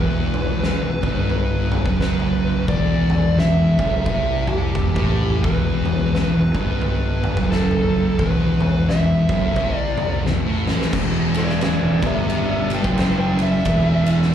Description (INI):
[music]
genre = stoner and doom metal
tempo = 87 BPM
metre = 4/4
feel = swing 61% on 8ths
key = E minor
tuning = A4 = 441 Hz
[part]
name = fuzz lead guitar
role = melody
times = 0.0-14.1 s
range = G4 to G5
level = -25 LUFS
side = right 1 dB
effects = distortion, slapback echo
[part]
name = thick fuzz guitar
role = riff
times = 0.0-14.3 s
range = E2 to C3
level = -24 LUFS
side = left 7 dB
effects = distortion
[part]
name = thick fuzz guitar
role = riff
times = 0.0-14.3 s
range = E2 to C3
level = -23 LUFS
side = right 6 dB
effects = distortion, slapback echo
[part]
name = fuzz fingered electric bass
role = bass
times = 0.0-14.3 s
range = E1 to C2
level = -24 LUFS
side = equal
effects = overdrive
[part]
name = oversized low-tuned drum kit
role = drums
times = 0.3-14.3 s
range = crash cymbal, kick drum, ride cymbal, snare drum, toms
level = -22 LUFS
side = equal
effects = none
[sound]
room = light reverb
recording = live gig heard through the venue's PA, club reverb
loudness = -17 LUFS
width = side -10 dB against mid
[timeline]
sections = 0.0-10.9 A section; 10.9-14.3 B section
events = drum fill 10.2-10.9; lead electric guitar solo 10.9-14.3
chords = 0.0 Em